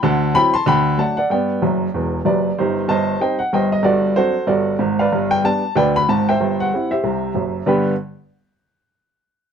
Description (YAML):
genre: jazz, stride piano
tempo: 188 BPM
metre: 4/4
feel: swing 59% on 8ths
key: G major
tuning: A4 = 440 Hz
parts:
  - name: warm upright piano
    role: solo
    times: 0.0-7.9 s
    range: E1 to C6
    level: -16 LUFS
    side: equal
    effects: none
room: light reverb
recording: close, detailed microphones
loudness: -16 LUFS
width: side -7 dB against mid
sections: 0.0-2.6 A section; 2.6-7.7 B section; 7.7-9.0 C section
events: upright piano fill 1.6-2.6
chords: 0.0 D9; 0.7 D; 1.3 G; 2.6 Cm/G; 3.8 D7/G; 5.1 G; 6.4 C/G; 7.7 G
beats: | 0.02 0.34 0.66 0.98 | 1.30 1.62 1.93 2.25 | 2.57 2.89 3.21 3.53 | 3.85 4.17 4.49 4.80 | 5.12 5.44 5.76 6.08 | 6.40 6.72 7.04 7.36 | 7.68